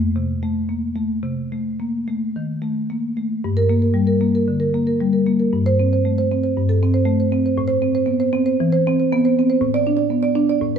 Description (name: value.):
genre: classical, contemporary piece for solo marimba.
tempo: 106-119 BPM.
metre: 4/4.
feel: rubato.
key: G minor.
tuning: A4 = 439 Hz.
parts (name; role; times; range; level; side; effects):
marimba with soft mallets; solo; 0.0-10.8 s; F2 to D5; -17 LUFS; equal; none.
room: wet stone room reverb, RT60 1.3 s.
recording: minimal, uncompressed stereo recording.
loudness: -17 LUFS.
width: side -7 dB against mid.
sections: 0.0-3.4 A section; 3.4-10.8 B section.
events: none.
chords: 0.0 F (rootless); 1.2 Cm6; 3.4 Gm; 5.5 Am7/G; 7.6 Amadd9; 9.6 Bm7/A.